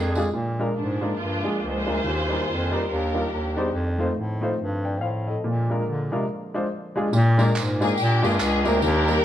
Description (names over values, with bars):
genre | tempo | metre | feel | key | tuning
uptempo gospel | 141 BPM | 4/4 | swing 62% on 8ths | unclear | A4 = 438 Hz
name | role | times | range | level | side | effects
mellow French horn section | sustained chords | 0.0-7.1 s | D3 to Ab4 | -36 LUFS | right 1 dB | none
clear bass clarinet | bass | 0.0-9.2 s | Db2 to D3 | -24 LUFS | equal | none
warm upright piano | accompaniment | 0.2-9.2 s | Bb2 to G5 | -25 LUFS | left 1 dB | none
tambourine and handclaps | percussion | 0.2, 7.1-9.2 s | none | -33 LUFS | right 4 dB | none
warm studio string section | melody | 0.8-3.7, 7.8-9.2 s | F3 to C5 | -26 LUFS | left 1 dB | none
room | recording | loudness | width
moderate large studio reverb, RT60 1.4 s | worn, warbling old tape, cassette tape, warbly pitch drift | -21 LUFS | side -11 dB against mid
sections
0.3-7.1 A section; 7.1-9.2 B section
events
break 6.3-7.1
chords
0.3 Bb7; 2.0 Ebmaj7; 3.7 F7; 5.4 Bb7